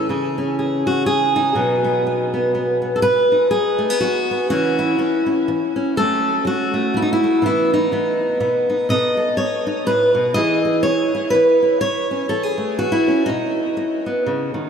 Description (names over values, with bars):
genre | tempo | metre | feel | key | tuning
folk, solo fingerstyle acoustic guitar | 123 BPM | 3/4 | swing 57% on 8ths | unclear | A4 = 438 Hz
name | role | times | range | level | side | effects
fingerpicked steel-string acoustic guitar | solo | 0.0-14.7 s | F#2 to D#5 | -16 LUFS | equal | tape echo
room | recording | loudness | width
wet huge ambient reverb, RT60 6.2 s | dreamy mix soaked in reverb | -16 LUFS | side -7 dB against mid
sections
0.0-3.0 A section; 3.0-14.7 B section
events
none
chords
0.1 C#m; 1.6 B; 4.5 C#m; 6.0 F#m; 7.4 E5/B; 8.4 B; 8.9 B7; 10.4 C#m7; 11.8 A/C#; 13.3 B